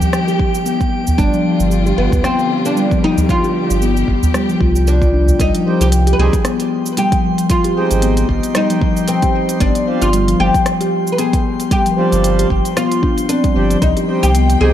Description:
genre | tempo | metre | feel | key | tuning
organic downtempo | 114 BPM | 4/4 | swing 56% on 16ths | G phrygian dominant | A4 = 440 Hz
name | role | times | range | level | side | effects
rich chamber string section | sustained chords | 0.0-5.4, 13.8-14.7 s | D3 to G5 | -26 LUFS | left 2 dB | sidechain pumping, shimmer reverb
steel tongue drum | arpeggios | 0.0-14.5 s | F3 to G4 | -17 LUFS | left 2 dB | tape echo, shimmer reverb
deep house drum kit | drums | 0.0-14.6 s | cabasa, hi-hat, rim click | -24 LUFS | right 1 dB | small room ambience
udu | percussion | 0.0-5.4 s | none | -18 LUFS | right 1 dB | none
drifting glass-harmonics texture | texture | 0.0-14.7 s | G5 to C6 | -30 LUFS | right 1 dB | chorus, built-in reverb, shimmer reverb
electronic kick drum | drums | 0.4-13.9 s | none | -18 LUFS | equal | small room ambience
oud | melody | 1.2-14.7 s | B3 to B4 | -19 LUFS | left 1 dB | vintage 12-bit sampler grit, digital delay, shimmer reverb
warm sub bass | bass | 1.2-14.7 s | G1 to C2 | -15 LUFS | equal | sidechain pumping
pedal harmonium | accompaniment | 5.7-14.7 s | G3 to G4 | -23 LUFS | right 3 dB | sidechain pumping, tape echo, shimmer reverb
room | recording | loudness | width
light reverb, small room ambience | dark, warm production | -12 LUFS | side -11 dB against mid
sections
0.0-5.4 A section; 5.4-14.7 B section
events
none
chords
0.0 N.C.; 1.2 G7sus4; 5.4 Cm; 7.5 Abmaj7; 9.6 G7sus4; 13.8 Cm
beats
0.13 0.66 | 1.19 1.71 2.24 2.76 | 3.29 3.82 4.34 4.87 | 5.39 5.92 6.45 6.97 | 7.50 8.03 8.55 9.08 | 9.61 10.13 10.66 11.19 | 11.71 12.24 12.76 13.29 | 13.82 14.34

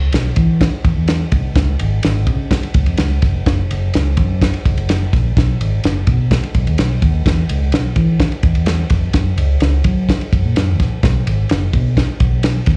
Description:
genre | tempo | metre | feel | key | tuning
uptempo 1960s-style soul | 127 BPM | 4/4 | straight | E major | A4 = 440 Hz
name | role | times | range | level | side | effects
vintage muted fingered electric bass | bass | 0.0-12.8 s | E#1 to F#3 | -18 LUFS | equal | none
warm soul drum kit | drums | 0.1-12.8 s | kick drum, ride cymbal, snare drum | -19 LUFS | equal | slapback echo
room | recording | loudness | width
little or no reverb | live gig heard through the venue's PA, club reverb | -16 LUFS | mono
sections
0.0-12.8 A section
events
none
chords
none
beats
0.14 0.61 1.09 | 1.56 2.04 2.51 2.99 | 3.46 3.94 4.41 4.89 | 5.36 5.83 6.31 6.78 | 7.26 7.73 8.20 8.67 | 9.14 9.62 10.09 10.56 | 11.03 11.50 11.97 12.44

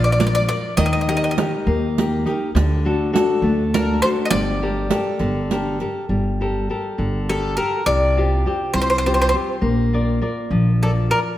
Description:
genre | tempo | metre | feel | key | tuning
italian folk, Italian serenade | 68 BPM (dotted quarters) | 6/8 | straight | G minor | A4 = 440 Hz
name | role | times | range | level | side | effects
bowl-back mandolin | melody | 0.0-11.2 s | A4 to Eb5 | -22 LUFS | left 1 dB | none
nylon-string guitar | accompaniment | 0.0-11.3 s | C3 to D5 | -21 LUFS | left 2 dB | none
upright bass | bass | 0.0-11.1 s | G1 to Eb2 | -21 LUFS | right 1 dB | none
riq | percussion | 0.2-5.9 s | none | -26 LUFS | right 5 dB | none
room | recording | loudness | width
moderate concert hall reverb, RT60 2.3 s | none | -17 LUFS | side -13 dB against mid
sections
0.0-6.1 A section; 6.1-11.4 A section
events
none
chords
0.0 Bb; 0.8 Eb; 2.5 D; 4.3 Gmadd9; 7.9 Csus4; 9.6 Bb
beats
| 0.78 1.67 | 2.55 3.43 | 4.31 5.20 | 6.09 6.98 | 7.86 8.74 | 9.62 10.50

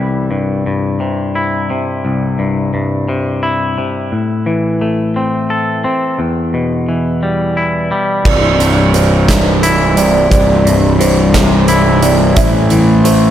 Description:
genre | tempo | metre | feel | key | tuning
post-rock | 58 BPM (dotted quarters) | 6/8 | straight | C major | A4 = 440 Hz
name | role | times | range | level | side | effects
twangy electric guitar | arpeggios | 0.0-13.3 s | C2 to A4 | -14 LUFS | left 2 dB | analog delay
warbly tape-like pad | sustained chords | 9.4-13.3 s | G3 to C5 | -18 LUFS | equal | chorus, built-in reverb
felt-muted upright piano | arpeggios | 8.2-13.3 s | C5 to E5 | -18 LUFS | right 4 dB | analog delay
fuzz fingered electric bass | bass | 8.3-13.3 s | C1 to A1 | -12 LUFS | equal | overdrive
huge arena drum kit | drums | 8.3-13.2 s | crash cymbal, hi-hat, kick drum, snare drum | -15 LUFS | right 1 dB | none
room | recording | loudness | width
light reverb, studio ambience | none | -11 LUFS | side -11 dB against mid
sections
0.0-8.3 A section; 8.3-13.3 A section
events
none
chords
0.0 C; 4.1 Am; 6.2 Em; 8.3 C; 12.4 Am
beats
1.01 | 2.05 3.09 | 4.13 5.16 | 6.20 7.23 | 8.26 9.29 | 10.32 11.35 | 12.38

